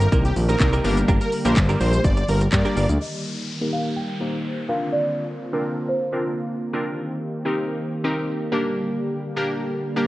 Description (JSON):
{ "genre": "dance-pop", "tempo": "125 BPM", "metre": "4/4", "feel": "straight", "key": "unclear", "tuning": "A4 = 440 Hz", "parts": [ { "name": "supersaw chords", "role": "melody", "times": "0.0-2.9 s", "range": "G4 to D5", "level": "-27 LUFS", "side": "right 1 dB", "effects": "sidechain pumping, digital delay" }, { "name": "warm analog pad", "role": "sustained chords", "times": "0.0-10.1 s", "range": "D3 to G4", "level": "-28 LUFS", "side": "equal", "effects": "chorus, sidechain pumping, low-pass filter" }, { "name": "direct-recorded clean electric guitar", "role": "riff", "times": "0.0-2.9 s", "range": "Bb3 to Bb4", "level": "-28 LUFS", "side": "right 4 dB", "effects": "ensemble chorus" }, { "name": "fat analog bass", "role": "bass", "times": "0.0-3.0 s", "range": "G1 to G2", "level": "-20 LUFS", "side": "equal", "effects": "sidechain pumping" }, { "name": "house drum kit", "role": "drums", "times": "0.0-3.0 s", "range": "handclaps, hi-hat, kick drum, shaker", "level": "-22 LUFS", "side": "equal", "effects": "none" }, { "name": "glassy wavetable pluck", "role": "accompaniment", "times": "0.6-10.1 s", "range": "G3 to C5", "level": "-26 LUFS", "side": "equal", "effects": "chorus, sidechain pumping, low-pass filter" }, { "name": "group handclap", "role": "percussion", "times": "0.6-2.6 s", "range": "none", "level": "barely audible", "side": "none", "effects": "none" }, { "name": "folk marimba with soft mallets", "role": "melody", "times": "3.0-6.6 s", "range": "C5 to G5", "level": "-27 LUFS", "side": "right 1 dB", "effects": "low-pass filter" }, { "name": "downlifter and swell", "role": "sound effects", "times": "3.0-10.1 s", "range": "none", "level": "-36 LUFS", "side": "right 1 dB", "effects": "none" } ], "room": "light reverb", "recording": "worn, warbling old tape, cassette tape, warbly pitch drift, nothing above 10.3 kHz", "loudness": "-20 LUFS", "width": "side -17 dB against mid", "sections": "0.0-3.0 A section; 3.0-10.1 B section", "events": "drop 0.0-3.0; filter sweep 3.0-10.1", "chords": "0.0 Cm7; 0.8 Gm; 3.0 Eb; 4.7 Bbadd9; 6.8 Cm7; 8.5 Gm", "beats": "0.12 0.60 | 1.08 1.56 2.04 2.52 | 3.00 3.48 3.96 4.44 | 4.92 5.40 5.88 6.36 | 6.84 7.32 7.80 8.28 | 8.76 9.24 9.72" }